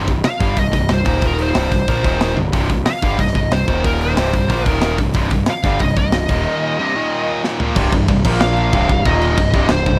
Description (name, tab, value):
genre	heavy metal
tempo	184 BPM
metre	4/4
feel	straight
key	C minor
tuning	A4 = 440 Hz
part	heavy high-gain guitar	riff	0.0-10.0 s	C2 to Bb3	-25 LUFS	equal	distortion
part	heavy high-gain guitar	riff	0.0-10.0 s	C2 to Bb3	-26 LUFS	equal	distortion
part	fuzz picked electric bass	bass	0.0-10.0 s	C1 to Bb1	-22 LUFS	equal	overdrive
part	tight metal drum kit	drums	0.1-9.9 s	crash cymbal, hi-hat, kick drum, snare drum, toms	-22 LUFS	equal	none
part	high-gain lead guitar	melody	0.2-10.0 s	Bb4 to F5	-23 LUFS	equal	distortion, slapback echo
part	raw garage guitar	riff	7.8-10.0 s	C2 to Bb3	-25 LUFS	equal	none
room	light reverb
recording	none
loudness	-17 LUFS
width	mono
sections	0.0-7.8 A section; 7.8-10.0 B section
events	drum fill 2.4, 7.4-7.8; half time 7.8-10.0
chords	0.0 Cm; 1.1 Eb5; 1.6 C5; 2.0 Eb5; 2.4 Cm; 3.7 Eb5; 4.2 C5; 4.7 Eb5; 5.0 Cm; 6.3 Eb5; 6.8 Cm; 6.9 Eb5; 7.6 Bb5; 7.8 C5; 8.2 Bb5; 8.7 C5; 9.1 Eb5; 9.4 Cm